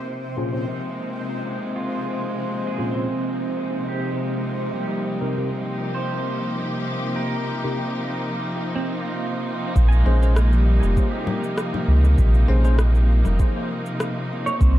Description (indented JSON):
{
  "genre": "ambient dub",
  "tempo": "99 BPM",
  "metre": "4/4",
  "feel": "swing 54% on 16ths",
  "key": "unclear",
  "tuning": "A4 = 441 Hz",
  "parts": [
    { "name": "rich studio string section", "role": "sustained chords", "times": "0.0-14.8 s", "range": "Bb2 to G4", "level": "-27 LUFS", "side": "left 1 dB", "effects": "none" },
    { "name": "bubbling stepped-filter texture", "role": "texture", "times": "0.0-9.8 s", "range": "C4 to C5", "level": "-33 LUFS", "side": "left 2 dB", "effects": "chorus, built-in reverb" },
    { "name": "bell-like tine electric piano", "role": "stabs", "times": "0.4-12.8 s", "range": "Bb2 to C5", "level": "-32 LUFS", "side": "left 2 dB", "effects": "wide subtle chorus, low-pass filter, dub echo" },
    { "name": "pedal steel guitar", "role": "arpeggios", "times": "1.8-14.8 s", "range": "G3 to Ab5", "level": "-29 LUFS", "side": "right 3 dB", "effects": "dub echo" },
    { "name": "warm sub bass", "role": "bass", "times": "9.8-14.8 s", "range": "F1 to Db2", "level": "-16 LUFS", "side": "equal", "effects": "tube saturation" },
    { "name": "electronic cabasa, rim click and congas", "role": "drums", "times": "9.8-14.7 s", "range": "none", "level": "-29 LUFS", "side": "left 2 dB", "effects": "overdrive, low-pass filter on perc, low-pass filter on snare, dub echo" },
    { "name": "electronic kick drum", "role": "drums", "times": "9.8-14.7 s", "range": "none", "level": "-20 LUFS", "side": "equal", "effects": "overdrive" }
  ],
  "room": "little or no reverb",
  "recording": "echo-heavy mix",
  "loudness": "-20 LUFS",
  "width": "side -14 dB against mid",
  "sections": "0.0-9.8 A section; 9.8-14.8 B section",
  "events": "filter sweep on string section 0.0-9.8",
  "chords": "0.1 Bb7sus2; 4.9 Cm7; 9.8 Bbm9"
}